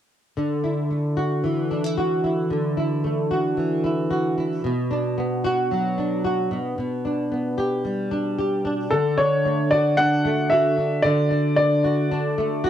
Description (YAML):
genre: pop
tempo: 112 BPM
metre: 4/4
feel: straight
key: D major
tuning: A4 = 441 Hz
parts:
  - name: flamenco guitar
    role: accompaniment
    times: 0.4-12.7 s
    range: B2 to G4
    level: -21 LUFS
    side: equal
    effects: double-tracked left and right
  - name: clear upright piano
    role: melody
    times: 8.9-12.7 s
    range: A4 to F#5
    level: -20 LUFS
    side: left 1 dB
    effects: cassette tape, analog delay
room: moderate studio reverb, RT60 0.6 s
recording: home recording on cassette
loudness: -20 LUFS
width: side -10 dB against mid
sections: 0.4-8.9 A section; 8.9-12.7 B section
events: none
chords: 0.4 Dadd9; 4.6 Bm; 6.5 G/B; 8.9 D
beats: | 0.37 0.91 1.44 1.97 | 2.51 3.04 3.57 4.11 | 4.64 5.17 5.71 6.24 | 6.77 7.31 7.84 8.37 | 8.91 9.44 9.97 10.50 | 11.04 11.57 12.10 12.63